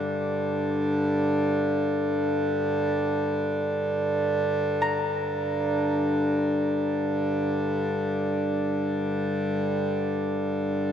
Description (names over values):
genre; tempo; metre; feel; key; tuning
world meditative, free-time meditation music; free time; none; none; G minor; A4 = 439 Hz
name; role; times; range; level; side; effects
hand-pumped harmonium; drone; 0.0-10.9 s; G2 to D3; -24 LUFS; equal; none
concert harp; texture; 0.0-10.9 s; Bb5 to D6; -35 LUFS; left 2 dB; none
room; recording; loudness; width
wet cathedral reverb, RT60 6.2 s; dark, warm production; -24 LUFS; side -9 dB against mid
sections
0.0-10.9 A section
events
none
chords
none